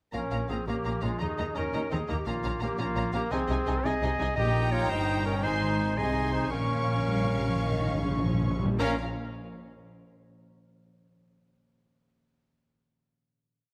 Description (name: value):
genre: cinematic, heroic adventure film score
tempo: 103-115 BPM (dotted quarters)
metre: 12/8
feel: straight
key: Bb dorian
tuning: A4 = 440 Hz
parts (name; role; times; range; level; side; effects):
- rich symphonic violin section; melody; 0.1-9.0 s; Ab5 to Db6; -41 LUFS; equal; none
- bright clarinet; second line; 0.1-9.0 s; F4 to Eb5; -37 LUFS; equal; none
- rich symphonic violin section; second line; 0.1-9.0 s; Eb5 to Ab5; -42 LUFS; equal; none
- rich studio viola section; accompaniment; 0.1-9.0 s; Db4 to Eb4; -41 LUFS; equal; none
- concert harp; arpeggios; 0.1-11.1 s; Ab2 to F5; -43 LUFS; equal; none
- warm trumpet; stabs; 0.1-9.0 s; Ab3 to Ab4; -36 LUFS; equal; none
- rich symphonic double bass section; bass; 0.1-9.0 s; G1 to Eb2; -35 LUFS; equal; none
- warm symphonic cello section; bass; 0.1-9.0 s; G2 to G3; -36 LUFS; equal; none
- timpani; percussion; 4.4-9.0 s; Bb2; -34 LUFS; equal; none
room: light reverb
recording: none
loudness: -29 LUFS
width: mono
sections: 0.1-8.8 theme; 8.8-11.1 final chord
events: slowing down 5.1-8.8; timpani fill 6.5-8.8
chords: 0.1 Bbm; 1.2 Ebsus4; 2.3 Bbm; 3.3 Ab/C; 4.4 Eb/Bb; 5.4 Ab; 6.5 Bbm